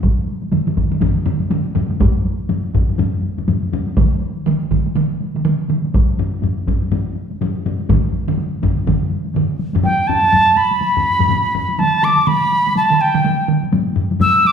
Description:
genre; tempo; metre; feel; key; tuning
japanese traditional, taiko drum ensemble; 123 BPM; 4/4; swing 60% on 16ths; unclear; A4 = 440 Hz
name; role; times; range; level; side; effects
solo taiko drums; percussion; 0.0-9.0 s; none; -19 LUFS; equal; none
taiko ensemble; percussion; 0.0-14.5 s; none; -23 LUFS; left 1 dB; none
taiko ensemble; percussion; 0.5-14.3 s; none; -21 LUFS; left 4 dB; none
taiko ensemble; percussion; 0.5-13.6 s; none; -20 LUFS; right 3 dB; none
bright wooden piccolo; melody; 9.8-14.5 s; G5 to E6; -13 LUFS; right 1 dB; none
room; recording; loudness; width
wet large studio reverb, RT60 1.4 s; band playing live in one room; -15 LUFS; side -7 dB against mid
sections
0.0-9.8 A section; 9.8-14.5 B section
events
none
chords
none

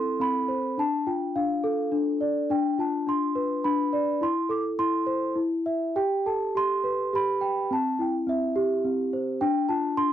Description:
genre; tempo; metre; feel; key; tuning
children's music, lullaby; 105 BPM; 3/4; rubato; unclear; A4 = 440 Hz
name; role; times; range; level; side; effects
celesta; solo; 0.0-10.1 s; C4 to D6; -24 LUFS; equal; none
room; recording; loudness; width
little or no reverb; dry, close 1970s-style studio recording; -24 LUFS; side -10 dB against mid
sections
0.0-10.1 A section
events
none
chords
0.0 Am; 0.8 Dm; 2.5 Bdim/D; 4.2 Am/E; 5.4 N.C.; 6.0 Gadd9; 7.7 C; 9.4 Dm7

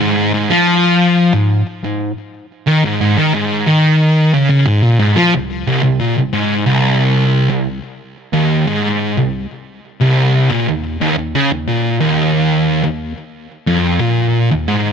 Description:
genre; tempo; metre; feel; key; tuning
metal; 90 BPM; 4/4; straight; unclear; A4 = 440 Hz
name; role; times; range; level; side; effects
fuzz guitar; solo; 0.0-14.9 s; C2 to F3; -12 LUFS; equal; distortion, ping-pong delay
room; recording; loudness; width
light reverb; none; -12 LUFS; side -7 dB against mid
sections
0.0-5.3 A section; 5.3-14.9 B section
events
none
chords
none

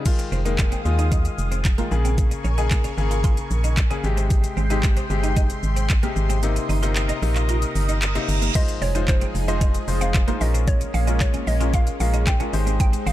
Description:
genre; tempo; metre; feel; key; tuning
dance-pop; 113 BPM; 4/4; straight; unclear; A4 = 441 Hz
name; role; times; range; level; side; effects
clear concert grand piano; accompaniment; 0.1-13.1 s; C3 to C5; -28 LUFS; left 5 dB; sidechain pumping
lush unison pad; sustained chords; 0.1-13.1 s; F3 to Eb6; -31 LUFS; equal; chorus, phaser, sidechain pumping
pop drum kit; drums; 0.1-13.1 s; crash cymbal, handclaps, hi-hat, kick drum, shaker; -22 LUFS; equal; none
twelve-string electric guitar; riff; 0.2-13.1 s; Bb3 to F4; -33 LUFS; right 6 dB; ensemble chorus
organ-like FM bass; bass; 0.3-13.1 s; F1 to Eb2; -22 LUFS; equal; sidechain pumping
reverse cymbal and impact; sound effects; 7.9-10.7 s; none; -33 LUFS; right 4 dB; none
mallet-like synth pluck; melody; 8.6-13.1 s; C5 to G5; -30 LUFS; right 1 dB; chorus
room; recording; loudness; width
little or no reverb; dark, warm production; -19 LUFS; side -14 dB against mid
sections
0.1-8.6 A section; 8.6-13.1 B section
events
kick muted 6.4-8.6; reverse cymbal 7.9-8.6; impact 8.6-10.7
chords
0.1 Fm7; 1.9 Bbm7; 4.0 Abmaj7; 6.4 Cm7/G; 8.6 Fm7; 10.4 Bbm7; 12.5 Abmaj7

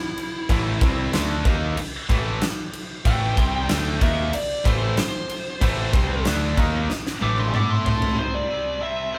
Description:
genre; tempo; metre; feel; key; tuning
hard rock; 94 BPM; 4/4; straight; unclear; A4 = 440 Hz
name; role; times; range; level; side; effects
smooth overdriven lead guitar; melody; 0.0-9.2 s; E4 to D6; -30 LUFS; equal; none
huge arena drum kit; drums; 0.2-8.2 s; crash cymbal, kick drum, snare drum, toms; -26 LUFS; equal; none
distorted electric guitar; riff; 0.5-9.2 s; A2 to A4; -33 LUFS; equal; distortion
high-gain distorted guitar; riff; 0.5-8.2 s; A2 to A4; -34 LUFS; equal; distortion
overdriven electric guitar; riff; 0.5-8.2 s; A2 to A4; -33 LUFS; equal; none
growling picked electric bass; bass; 0.5-8.1 s; A1 to A2; -28 LUFS; equal; overdrive
room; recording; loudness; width
light reverb; band playing live in one room; -23 LUFS; mono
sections
0.0-8.2 A section; 8.2-9.2 B section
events
lead electric guitar solo 0.0-8.2; drum fill 6.9-8.2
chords
0.0 Am; 8.2 C5

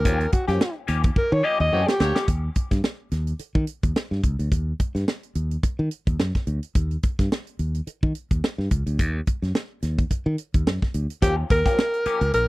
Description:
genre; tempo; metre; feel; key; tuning
funk; 107 BPM; 4/4; swing 56% on 16ths; Eb mixolydian; A4 = 440 Hz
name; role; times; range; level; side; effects
breathy alto saxophone; melody; 0.0-2.3, 11.2-12.5 s; Gb4 to Eb5; -22 LUFS; equal; none
modern bright fingered electric bass; bass; 0.0-12.5 s; Bb1 to Eb3; -24 LUFS; equal; none
electric guitar at the edge of break-up; accompaniment; 0.1-2.3, 11.2-12.4 s; F3 to G4; -30 LUFS; left 6 dB; wah, spring reverb
tight funk drum kit; drums; 0.1-12.5 s; hi-hat, kick drum, snare drum; -22 LUFS; equal; none
clear horn section; second line; 1.7-2.2 s; Bb3 to Db5; -29 LUFS; left 1 dB; none
room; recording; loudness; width
little or no reverb; dry, close 1970s-style studio recording; -21 LUFS; side -20 dB against mid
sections
0.0-2.3 A section; 2.3-11.2 B section; 11.2-12.5 C section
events
alto saxophone solo 0.0-2.3; drum fill 1.2-2.3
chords
0.0 Eb9; 2.3 N.C.; 11.2 Eb9

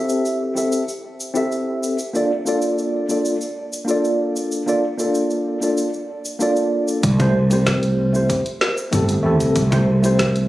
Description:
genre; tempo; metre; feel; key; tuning
sunset chillout; 95 BPM; 4/4; straight; C mixolydian; A4 = 440 Hz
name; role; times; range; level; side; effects
tine electric piano; accompaniment; 0.0-10.5 s; A3 to E5; -19 LUFS; equal; medium stereo tremolo, auto-pan, low-pass filter, ping-pong delay
deep house drum kit; drums; 0.1-10.5 s; congas, hi-hat, shaker, snare drum; -26 LUFS; equal; none
fretless electric bass; bass; 7.0-10.5 s; G1 to E2; -17 LUFS; equal; wide subtle chorus
electronic kick drum; drums; 7.0-10.3 s; none; -24 LUFS; equal; none
room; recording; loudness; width
moderate plate reverb, RT60 2.9 s; recorded on a phone in the room, studio reverb, compression; -17 LUFS; side -16 dB against mid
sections
0.0-7.0 A section; 7.0-10.5 B section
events
none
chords
0.0 C6; 2.0 Bbmaj7; 7.0 C6

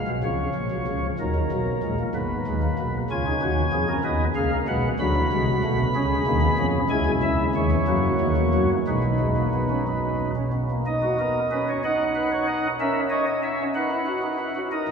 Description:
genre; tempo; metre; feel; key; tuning
classical, baroque-style 4-part fugue for pipe organ; 62 BPM (dotted quarters); 6/8; straight; B major; A4 = 440 Hz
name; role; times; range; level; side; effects
pipe organ, flutes; solo; 0.0-14.9 s; G#1 to B5; -21 LUFS; equal; none
room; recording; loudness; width
wet cathedral reverb, RT60 6.5 s; heard from further back in the room, small room ambience; -21 LUFS; side -6 dB against mid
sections
0.0-10.9 A section; 10.9-14.7 B section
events
none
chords
0.2 A#m; 1.2 D#m; 2.2 G#m; 3.1 C#; 4.1 B; 5.0 D7; 6.0 C#; 6.9 C#m; 7.9 F#7; 8.9 B; 11.8 B/D#; 12.8 A#dim/C#; 13.8 B/D#

